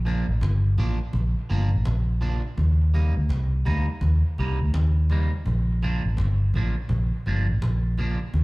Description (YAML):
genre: roots reggae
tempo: 83 BPM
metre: 4/4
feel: swing 62% on 16ths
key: Bb major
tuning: A4 = 440 Hz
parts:
  - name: vintage muted fingered electric bass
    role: bass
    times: 0.0-8.4 s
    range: G1 to Eb2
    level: -21 LUFS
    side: equal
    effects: none
  - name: electric guitar at the edge of break-up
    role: accompaniment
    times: 0.1-8.2 s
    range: F3 to Eb4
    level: -33 LUFS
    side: right 3 dB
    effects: phaser, tape echo, slapback echo
  - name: cajon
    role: drums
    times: 0.1-8.4 s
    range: none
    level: -36 LUFS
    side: equal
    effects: tape echo
room: small room ambience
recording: live gig heard through the venue's PA, club ambience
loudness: -21 LUFS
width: side -22 dB against mid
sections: 0.0-8.4 A section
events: none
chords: 0.0 Bb; 2.6 Eb; 5.5 Bb